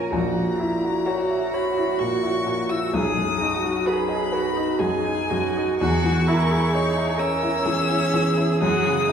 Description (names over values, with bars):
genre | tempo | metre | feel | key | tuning
classical, slow romantic movement for piano quartet | 64 BPM | 3/4 | rubato | B major | A4 = 441 Hz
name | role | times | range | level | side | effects
warm violin | melody | 0.0-9.1 s | G#5 to E6 | -27 LUFS | left 6 dB | none
rich cello | second line | 0.0-9.1 s | E4 to A#4 | -26 LUFS | right 5 dB | none
clear concert grand piano | accompaniment | 0.0-9.1 s | A#1 to E5 | -23 LUFS | left 1 dB | none
rich viola | accompaniment | 1.1-9.1 s | C#4 to F#4 | -28 LUFS | right 1 dB | none
room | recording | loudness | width
wet recital hall reverb, RT60 1.7 s | heard from further back in the room | -20 LUFS | side -7 dB against mid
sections
0.0-9.1 A section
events
none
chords
0.1 F#7/A#; 2.9 B; 5.8 C#m/E; 8.6 F#5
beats
| 0.11 1.06 2.00 | 2.93 3.86 4.78 | 5.79 6.72 7.65 | 8.61